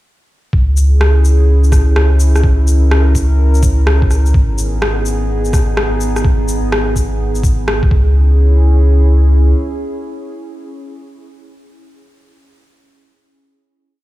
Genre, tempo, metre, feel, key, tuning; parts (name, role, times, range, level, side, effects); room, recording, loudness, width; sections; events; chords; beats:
future garage; 126 BPM; 4/4; swing 65% on 16ths; C# dorian; A4 = 440 Hz
warbly tape-like pad; sustained chords; 0.9-11.0 s; B3 to A#4; -21 LUFS; right 1 dB; chorus, built-in reverb, sidechain pumping
warm sub bass; bass; 0.5-9.5 s; G#1 to C#2; -11 LUFS; equal; sidechain pumping
electronic kick drum; drums; 0.5-8.0 s; -13 LUFS; equal
electronic shaker and rim click; drums; 0.8-7.8 s; -20 LUFS; left 1 dB; overdrive
digital ambience; played on a big sound system in a bare room, stone room reverb; -10 LUFS; side -16 dB against mid
0.5-8.2 groove; 8.2-12.0 final hit
0.5 C#m; 4.3 G#m; 7.9 C#m
| 0.53 1.01 1.48 1.96 | 2.44 2.91 3.39 3.87 | 4.34 4.82 5.29 5.77 | 6.25 6.72 7.20 7.67 | 8.15 8.63 9.10 9.58 | 10.06 10.53